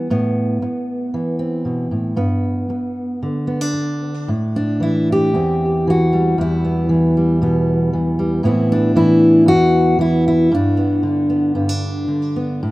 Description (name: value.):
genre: folk, solo fingerstyle acoustic guitar.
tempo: 115 BPM.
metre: 4/4.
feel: rubato.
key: A dorian.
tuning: A4 = 440 Hz.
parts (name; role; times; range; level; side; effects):
fingerpicked steel-string acoustic guitar; solo; 0.0-12.7 s; E2 to G4; -15 LUFS; equal; tape echo.
room: moderate studio ambience, RT60 0.5 s.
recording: rough home demo mix.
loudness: -15 LUFS.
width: side -19 dB against mid.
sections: 0.0-4.3 A section; 4.3-12.7 B section.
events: none.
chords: 0.1 Amadd9; 2.2 G; 4.3 Am7; 6.4 Em; 8.5 Amadd9; 10.5 G.